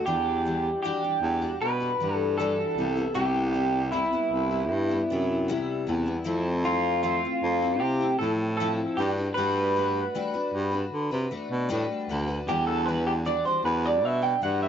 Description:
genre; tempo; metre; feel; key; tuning
indie pop, bedroom pop; 77 BPM; 4/4; straight; E minor; A4 = 440 Hz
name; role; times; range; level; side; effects
electric guitar through a small old amp; melody; 0.0-14.7 s; E4 to G5; -27 LUFS; right 1 dB; wide subtle chorus, analog delay
picked steel-string acoustic guitar; accompaniment; 0.0-14.7 s; C3 to B4; -31 LUFS; left 3 dB; analog chorus, warbly pitch drift
breathy baritone saxophone; bass; 0.0-14.7 s; C2 to D3; -28 LUFS; right 1 dB; none
room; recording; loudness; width
light reverb; home recording on cassette, nothing above 7.6 kHz; -24 LUFS; side -8 dB against mid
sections
0.1-14.7 A section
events
none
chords
0.1 Em9; 2.8 Cmaj7; 6.3 Fmaj7; 9.0 Gmaj9; 12.5 Em9

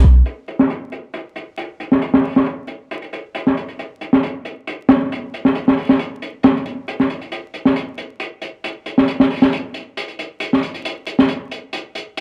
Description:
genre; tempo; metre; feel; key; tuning
breakbeat; 136 BPM; 4/4; straight; none; none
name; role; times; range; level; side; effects
crunchy breakbeat drum kit; drums; 0.3-12.2 s; hi-hat, snare drum; -19 LUFS; equal; low-pass filter on kick, low-pass filter on hats, low-pass filter on snare, low-pass filter on room
room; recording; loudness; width
moderate digital room reverb, RT60 1.0 s; dark, warm production, vinyl crackle; -19 LUFS; mono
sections
0.3-12.2 A section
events
none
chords
none

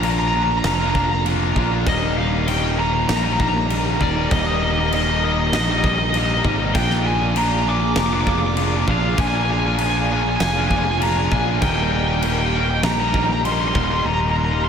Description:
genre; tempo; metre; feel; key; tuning
post-rock; 98 BPM; 4/4; straight; Eb major; A4 = 439 Hz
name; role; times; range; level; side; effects
crunchy overdriven guitar; melody; 0.0-14.7 s; D5 to D6; -22 LUFS; left 1 dB; lush chorus, ping-pong delay
distorted electric guitar; riff; 0.0-14.7 s; Eb2 to F4; -25 LUFS; left 7 dB; distortion
raw garage guitar; riff; 0.0-14.0 s; Eb2 to F4; -26 LUFS; right 11 dB; overdrive
fingered electric bass; bass; 0.0-14.7 s; Eb1 to Bb1; -23 LUFS; equal; none
huge arena drum kit; drums; 0.0-13.9 s; crash cymbal, kick drum, snare drum; -25 LUFS; equal; none
hollow soft pad; sustained chords; 1.9-14.7 s; Eb4 to Bb5; -31 LUFS; right 1 dB; ensemble chorus
room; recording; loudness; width
wet huge ambient reverb, RT60 7.1 s; dreamy mix soaked in reverb; -17 LUFS; side -7 dB against mid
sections
0.0-14.7 A section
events
none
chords
0.0 Bb; 1.9 Eb; 6.7 Bb7; 11.6 Eb

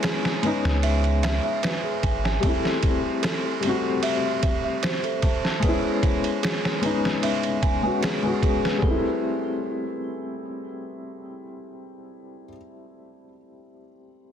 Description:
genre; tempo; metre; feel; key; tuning
trip hop; 75 BPM; 4/4; straight; A dorian; A4 = 441 Hz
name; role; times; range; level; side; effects
felt-muted upright piano; accompaniment; 0.0-14.3 s; G3 to F#4; -26 LUFS; left 3 dB; tremolo, low-pass filter, tape echo
music box; arpeggios; 0.0-9.2 s; G#4 to A5; -30 LUFS; right 2 dB; vintage 12-bit sampler grit, low-pass filter, ping-pong delay
trip hop sampler-style drum kit; drums; 0.0-9.0 s; kick drum, ride cymbal, snare drum; -25 LUFS; right 1 dB; vintage 12-bit sampler grit
soft 808-style bass; bass; 0.6-2.4 s; G#1 to C#2; -23 LUFS; equal; none
room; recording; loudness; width
light reverb, digital ambience; dense, heavily limited modern master; -21 LUFS; side -9 dB against mid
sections
0.0-8.8 A section; 8.8-12.0 B section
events
filter sweep on felt piano 0.0-8.8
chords
0.0 C#m7; 2.4 Am7; 5.6 C#m7; 8.8 Am7

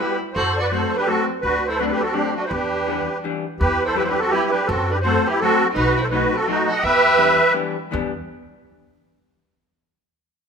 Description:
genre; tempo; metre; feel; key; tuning
musette waltz; 167 BPM; 3/4; swing 54% on 8ths; E minor; A4 = 440 Hz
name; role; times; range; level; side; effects
musette accordion; melody; 0.0-7.5 s; D4 to F#5; -18 LUFS; right 1 dB; none
rich violin; second line; 0.0-7.5 s; A3 to A4; -28 LUFS; right 2 dB; none
vintage hollow-body jazz guitar; accompaniment; 0.0-8.1 s; E3 to F#4; -26 LUFS; left 5 dB; none
upright bass; bass; 0.4-8.1 s; B1 to F#2; -26 LUFS; equal; none
room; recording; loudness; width
moderate recital hall reverb, RT60 1.7 s; minimal, uncompressed stereo recording; -17 LUFS; side -6 dB against mid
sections
0.0-3.6 A section; 3.6-7.9 B section; 7.9-9.0 C section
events
none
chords
0.4 F#dim; 1.4 D7; 2.5 Em7; 3.6 Emadd9; 4.7 F#dim; 5.8 B7; 6.8 Em7

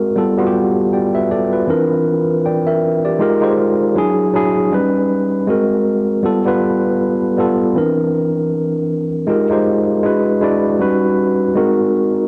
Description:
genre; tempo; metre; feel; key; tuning
R&B; 79 BPM; 4/4; swing 58% on 16ths; unclear; A4 = 440 Hz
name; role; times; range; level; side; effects
tine electric piano; solo; 0.0-12.3 s; E3 to G5; -16 LUFS; equal; overdrive, cassette tape
room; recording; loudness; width
light reverb; home recording on cassette; -16 LUFS; mono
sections
0.0-9.3 A section; 9.3-12.3 A section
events
none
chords
0.2 G9; 1.7 C9; 3.2 Fm11; 4.0 E9; 4.7 Ebaug7; 5.5 Ab9; 6.2 G9; 7.8 C9; 9.3 Fm11; 10.0 E9; 10.8 Eb7alt; 11.6 Ab9

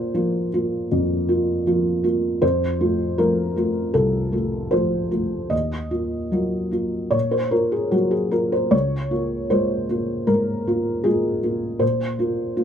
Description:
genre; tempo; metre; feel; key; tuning
neoclassical minimalist piano; 77 BPM; 4/4; uneven beats, rubato; Db major; A4 = 440 Hz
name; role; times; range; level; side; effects
felt-muted upright piano; solo; 0.0-12.6 s; C2 to Eb5; -19 LUFS; equal; none
room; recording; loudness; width
light reverb; close, detailed microphones; -19 LUFS; side -8 dB against mid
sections
0.0-12.6 A section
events
none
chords
0.0 Bbsus2; 2.4 F; 5.5 Ebmadd9; 8.7 Db6; 11.8 Bbsus2

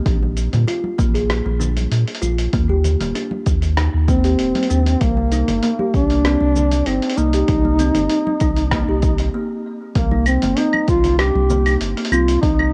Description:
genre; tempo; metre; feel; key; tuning
organic downtempo; 97 BPM; 4/4; straight; C minor; A4 = 437 Hz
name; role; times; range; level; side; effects
kalimba; arpeggios; 0.0-12.3 s; Bb3 to Eb5; -26 LUFS; equal; tape echo
warm sub bass; bass; 0.1-12.7 s; Eb1 to Bb2; -21 LUFS; equal; sidechain pumping
dusty soul sampler-style drum kit; drums; 0.1-12.7 s; cabasa, claves, hi-hat, rim click; -28 LUFS; equal; cassette tape
electronic kick drum; drums; 0.1-12.6 s; none; -22 LUFS; equal; overdrive, cassette tape
congas; percussion; 0.2-12.7 s; none; -32 LUFS; equal; none
dark duduk; melody; 4.1-12.7 s; Bb3 to G4; -21 LUFS; equal; cassette tape, tape echo
room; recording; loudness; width
light reverb, studio ambience; home recording on cassette; -18 LUFS; mono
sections
0.0-10.0 A section; 10.0-12.7 B section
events
break 9.3-10.0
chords
0.1 Bb7; 2.5 Ebmaj7; 5.0 Cm7

